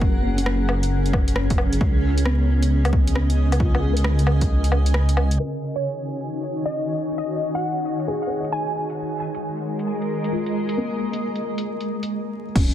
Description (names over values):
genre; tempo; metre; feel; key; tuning
future garage; 134 BPM; 4/4; swing 65% on 16ths; Eb minor; A4 = 440 Hz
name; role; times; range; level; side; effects
felt-muted upright piano; accompaniment; 0.0-12.7 s; F3 to Eb5; -30 LUFS; left 2 dB; vintage 12-bit sampler grit, sidechain pumping, low-pass filter, tape echo
granular cloud pad; sustained chords; 0.0-12.7 s; Db3 to Ab5; -26 LUFS; equal; built-in reverb, vintage 12-bit sampler grit, sidechain pumping
dark detuned saw bass; bass; 0.0-5.4, 12.6-12.7 s; Eb1 to Db2; -20 LUFS; equal; sidechain pumping
electronic kick drum; drums; 0.0-4.5, 12.6-12.7 s; none; -20 LUFS; equal; overdrive, small room ambience
deep house drum kit; drums; 0.4-12.7 s; crash cymbal, hi-hat, rim click, woodblock; -28 LUFS; left 1 dB; overdrive, low-pass filter on hats, small room ambience, low-pass filter on snare, low-pass filter on perc, low-pass filter on cymbals
glassy wavetable pluck; melody; 5.8-8.9 s; Db5 to Ab5; -28 LUFS; equal; chorus, analog delay
room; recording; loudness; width
light reverb; dense, heavily limited modern master, vinyl crackle, low-pass filter; -20 LUFS; side -11 dB against mid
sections
0.0-5.4 A section; 5.4-12.6 B section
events
kick drops out 4.5-5.4; filter sweep on felt piano 5.4-12.6; filter sweep 5.4-12.6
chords
0.0 Gbadd9; 1.8 Dbadd9; 5.4 Ebm7; 9.0 Absus2